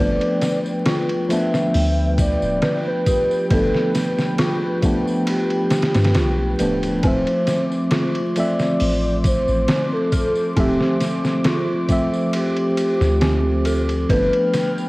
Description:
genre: trip hop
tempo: 68 BPM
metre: 4/4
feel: swing 53% on 16ths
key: D dorian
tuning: A4 = 441 Hz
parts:
  - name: pure breathy sine lead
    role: melody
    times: 0.0-14.7 s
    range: G4 to E5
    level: -23 LUFS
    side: equal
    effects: chorus, cassette tape, tape echo
  - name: tine electric piano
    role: accompaniment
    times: 0.0-14.9 s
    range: F3 to E5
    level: -22 LUFS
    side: equal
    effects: tremolo, cassette tape, tape echo
  - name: dark analog pad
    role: sustained chords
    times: 0.0-14.9 s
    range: B4 to F6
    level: -31 LUFS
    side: equal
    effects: chorus, vintage 12-bit sampler grit, cassette tape
  - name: dark detuned synth bell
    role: arpeggios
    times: 0.0-14.9 s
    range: C4 to B4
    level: -26 LUFS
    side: equal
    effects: chorus, cassette tape, tape echo
  - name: soft 808-style bass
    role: bass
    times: 0.0-14.3 s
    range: D1 to G2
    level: -21 LUFS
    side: equal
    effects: none
  - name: trip hop sampler-style drum kit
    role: drums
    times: 0.2-14.8 s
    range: hi-hat, kick drum, ride cymbal, snare drum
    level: -23 LUFS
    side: equal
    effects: none
  - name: tambourine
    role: percussion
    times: 0.4-14.9 s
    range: none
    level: -40 LUFS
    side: left 1 dB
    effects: none
room: light reverb, digital ambience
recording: home recording on cassette, vinyl crackle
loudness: -17 LUFS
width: side -21 dB against mid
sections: 0.0-14.9 A section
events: none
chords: 0.0 G7; 7.0 Dm7; 14.1 G7

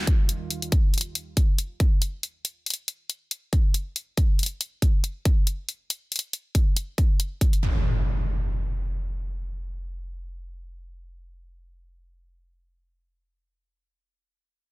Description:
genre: heavy wobble dubstep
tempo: 139 BPM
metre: 4/4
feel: swing 55% on 16ths, half-time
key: unclear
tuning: A4 = 440 Hz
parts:
  - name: lush unison pad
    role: sustained chords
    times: 0.0-0.7 s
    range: Eb2 to F4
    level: -38 LUFS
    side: right 4 dB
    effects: chorus, sidechain pumping
  - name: electronic hi-hat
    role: drums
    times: 0.1-7.6 s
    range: none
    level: -27 LUFS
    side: left 2 dB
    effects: none
  - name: electronic kick drum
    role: drums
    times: 0.1-7.5 s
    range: none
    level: -21 LUFS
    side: equal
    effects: none
  - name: impact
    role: sound effects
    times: 7.6-12.3 s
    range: none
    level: -28 LUFS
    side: equal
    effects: none
room: little or no reverb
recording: dense, heavily limited modern master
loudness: -23 LUFS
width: side -22 dB against mid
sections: 0.0-7.6 A section; 7.6-11.1 B section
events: none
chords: 0.0 Ebadd9; 0.7 N.C.

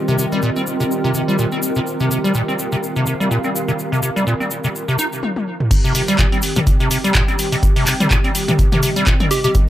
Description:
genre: acid house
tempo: 125 BPM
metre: 4/4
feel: swing 56% on 16ths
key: C minor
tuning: A4 = 439 Hz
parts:
  - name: warm analog pad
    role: sustained chords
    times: 0.0-9.7 s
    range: Eb3 to Bb4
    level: -24 LUFS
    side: right 1 dB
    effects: chorus, sidechain pumping
  - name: granular cloud pad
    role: texture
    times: 0.0-9.7 s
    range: C4 to F5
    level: -26 LUFS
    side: right 1 dB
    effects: built-in reverb, sidechain pumping
  - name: acid bass, square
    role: riff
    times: 0.1-9.5 s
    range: Bb2 to Eb4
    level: -19 LUFS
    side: equal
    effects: lush chorus, sidechain pumping, dub echo
  - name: egg shaker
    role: percussion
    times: 0.1-9.7 s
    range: none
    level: -28 LUFS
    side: left 2 dB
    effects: none
  - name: punchy analog drum machine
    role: drums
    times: 5.2-9.7 s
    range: crash cymbal, handclaps, hi-hat, toms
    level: -20 LUFS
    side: left 1 dB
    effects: none
  - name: electronic kick drum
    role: drums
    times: 5.7-9.7 s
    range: none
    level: -16 LUFS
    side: equal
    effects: none
  - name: plucky unison lead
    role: melody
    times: 9.3-9.5 s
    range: G4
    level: -18 LUFS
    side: equal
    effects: vintage 12-bit sampler grit
room: light reverb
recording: echo-heavy mix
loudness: -15 LUFS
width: side -13 dB against mid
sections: 0.0-5.7 A section; 5.7-9.7 B section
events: drum fill 5.2-5.7; drop 5.7-9.7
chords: 0.0 Cm

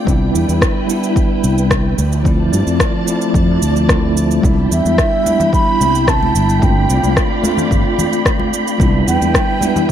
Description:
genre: sunset chillout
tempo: 110 BPM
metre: 4/4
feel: straight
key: C major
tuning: A4 = 441 Hz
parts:
  - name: bell-like tine electric piano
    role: accompaniment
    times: 0.0-9.9 s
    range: F3 to F4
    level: -18 LUFS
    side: equal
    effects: fast stereo tremolo, auto-pan, tape echo
  - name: soft string machine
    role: sustained chords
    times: 0.0-9.9 s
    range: F3 to B5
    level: -22 LUFS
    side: right 1 dB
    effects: ensemble chorus
  - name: fretless electric bass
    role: bass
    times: 0.1-9.3 s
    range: G1 to G2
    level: -16 LUFS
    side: equal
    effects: lush chorus
  - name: electronic kick drum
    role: drums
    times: 0.1-9.9 s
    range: none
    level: -17 LUFS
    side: equal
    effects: none
  - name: electronic shaker and rim click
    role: drums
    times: 0.1-9.9 s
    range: none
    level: -20 LUFS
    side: left 1 dB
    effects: none
  - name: congas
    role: percussion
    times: 4.4-9.9 s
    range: none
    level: -24 LUFS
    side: left 2 dB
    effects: none
  - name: wind-like tuned noise texture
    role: texture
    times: 5.0-9.9 s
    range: B5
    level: -26 LUFS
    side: right 4 dB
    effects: built-in reverb
  - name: baroque flute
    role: melody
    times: 4.7-9.9 s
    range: E5 to B5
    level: -18 LUFS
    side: right 2 dB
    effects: digital delay
room: moderate recital hall reverb, RT60 1.5 s, digital ambience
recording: dark, warm production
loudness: -12 LUFS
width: side -10 dB against mid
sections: 0.0-9.9 A section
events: none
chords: 0.1 Cmaj7; 2.0 Dm7; 4.4 Cmaj7; 6.6 G7sus4; 8.8 Cmaj7

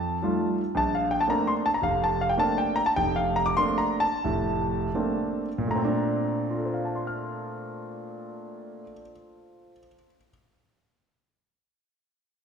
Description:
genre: solo jazz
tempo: 77-114 BPM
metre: 4/4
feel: swing 66% on 8ths, rubato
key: Bb major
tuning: A4 = 441 Hz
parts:
  - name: warm concert grand piano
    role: solo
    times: 0.0-10.3 s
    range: F1 to F6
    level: -24 LUFS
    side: equal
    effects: none
room: wet scoring stage reverb, RT60 1.7 s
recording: recorded in a church or concert hall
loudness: -24 LUFS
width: side -6 dB against mid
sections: 0.0-5.7 A section; 5.7-11.8 B section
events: slowing down 0.8-5.7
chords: 0.0 F9; 0.8 Bbmaj9

